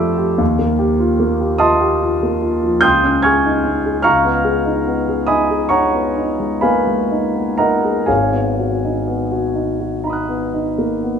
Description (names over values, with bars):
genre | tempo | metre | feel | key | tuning
classical, impressionist solo piano | 40-50 BPM (dotted quarters) | 9/8 | rubato | unclear | A4 = 440 Hz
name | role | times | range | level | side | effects
warm concert grand piano | solo | 0.0-11.2 s | G#1 to G#6 | -14 LUFS | equal | none
room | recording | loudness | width
moderate recital hall reverb, RT60 1.5 s | minimal, uncompressed stereo recording | -14 LUFS | side -7 dB against mid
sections
0.0-11.2 A section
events
none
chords
0.4 D#add9; 2.8 C#add9; 4.1 C#9; 8.1 G#m9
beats
| 0.40 1.60 2.84 | 4.05 5.29 6.64 | 8.09 9.56 11.02